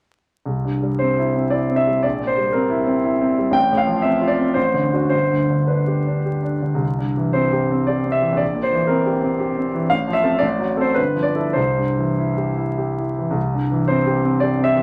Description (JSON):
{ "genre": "classical, romantic character piece for solo piano", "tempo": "98-121 BPM", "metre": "3/4", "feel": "rubato", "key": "C major", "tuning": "A4 = 440 Hz", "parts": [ { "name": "clear concert grand piano", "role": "solo", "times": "0.5-14.8 s", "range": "G1 to G5", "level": "-19 LUFS", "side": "equal", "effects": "none" } ], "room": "moderate stone room reverb, RT60 1.2 s", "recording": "vinyl crackle", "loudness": "-20 LUFS", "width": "mono", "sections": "0.4-13.4 A section; 13.4-14.8 A section", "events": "none", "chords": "0.4 C; 2.0 C7/Bb; 3.6 F/A; 4.6 D7/A; 5.1 G; 6.8 C; 9.9 F/A; 10.4 D7/A; 11.0 G13; 11.6 C" }